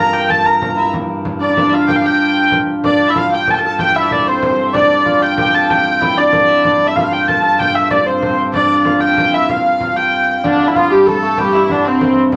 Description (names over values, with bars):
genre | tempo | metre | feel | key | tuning
medieval dance | 126 BPM (dotted quarters) | 6/8 | straight | G dorian | A4 = 439 Hz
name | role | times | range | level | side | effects
dark hurdy-gurdy | melody | 0.0-12.2 s | C4 to Bb5 | -16 LUFS | equal | none
bright fiddle | second line | 0.0-12.4 s | C4 to Bb5 | -27 LUFS | equal | none
hammered dulcimer | second line | 0.0-12.4 s | C3 to Bb4 | -20 LUFS | equal | none
warm viola da gamba | drone | 0.0-12.4 s | G2 | -30 LUFS | equal | none
frame drum | percussion | 0.1-12.4 s | none | -27 LUFS | equal | none
room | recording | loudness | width
wet studio reverb, RT60 0.6 s | none | -14 LUFS | mono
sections
0.0-2.8 A section; 2.8-10.4 B section; 10.4-12.4 B section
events
none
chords
none